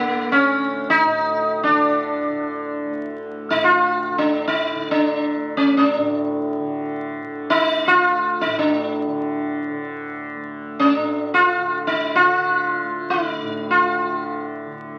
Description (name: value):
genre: indian classical, Hindustani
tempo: free time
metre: none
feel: none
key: D raga todi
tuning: A4 = 440 Hz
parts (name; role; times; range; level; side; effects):
- sitar; melody; 0.0-14.4 s; Bb3 to F4; -20 LUFS; equal; none
- tanpura; drone; 0.0-15.0 s; D2 to D3; -31 LUFS; equal; none
room: moderate large studio reverb, RT60 1.2 s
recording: very old 78 rpm record, vinyl crackle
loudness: -20 LUFS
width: mono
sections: 0.0-15.0 A section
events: none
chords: none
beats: free time